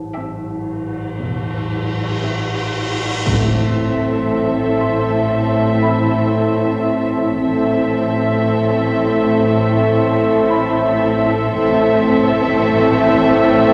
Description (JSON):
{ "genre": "cinematic, suspense film score", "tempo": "58 BPM", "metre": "4/4", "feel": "straight", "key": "A minor", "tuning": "A4 = 441 Hz", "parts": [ { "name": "metallic inharmonic drone", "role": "drone", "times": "0.0-13.7 s", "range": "A1", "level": "-27 LUFS", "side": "equal", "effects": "chorus, built-in reverb, phaser" }, { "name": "cymbal swell and impact", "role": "sound effects", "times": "0.7-7.4 s", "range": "none", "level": "-26 LUFS", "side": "equal", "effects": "none" }, { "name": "worn celesta", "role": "texture", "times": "0.0-13.7 s", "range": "B5 to C6", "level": "-30 LUFS", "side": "equal", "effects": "none" }, { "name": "muted chamber violin section", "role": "melody", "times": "0.2-13.7 s", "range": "E5", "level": "-24 LUFS", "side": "equal", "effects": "none" }, { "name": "muted chamber violin section", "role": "second line", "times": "0.2-13.7 s", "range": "G4 to A4", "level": "-24 LUFS", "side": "equal", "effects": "none" }, { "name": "muted chamber viola section", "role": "accompaniment", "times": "0.2-13.7 s", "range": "C4", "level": "-24 LUFS", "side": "equal", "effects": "none" }, { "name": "muted chamber cello section", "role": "bass", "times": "1.2-13.7 s", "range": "E2 to A2", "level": "-28 LUFS", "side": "equal", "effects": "none" }, { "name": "muted studio double bass section", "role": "bass", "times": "1.2-13.7 s", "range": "E1 to A1", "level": "-28 LUFS", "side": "equal", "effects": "none" }, { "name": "bright trombone section", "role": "sustained chords", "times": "3.3-13.7 s", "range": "A2 to A3", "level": "-23 LUFS", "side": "equal", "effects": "none" }, { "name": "mellow French horn section", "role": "sustained chords", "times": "3.3-13.7 s", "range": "C4 to E4", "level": "-24 LUFS", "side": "equal", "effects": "none" }, { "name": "timpani", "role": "percussion", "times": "3.3-4.8, 11.6-13.7 s", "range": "A2", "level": "-28 LUFS", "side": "equal", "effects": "none" } ], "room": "wet scoring stage reverb, RT60 1.8 s", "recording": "none", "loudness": "-16 LUFS", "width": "mono", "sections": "0.0-3.3 A section; 3.3-13.7 B section", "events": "cymbal swell 0.7-3.3; impact 3.3-7.4; timpani fill 11.6-13.7", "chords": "0.0 Am7; 3.3 Am", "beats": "0.17 1.21 2.24 | 3.27 4.31 5.34 6.38 | 7.41 8.45 9.48 10.52 | 11.55 12.59 13.62" }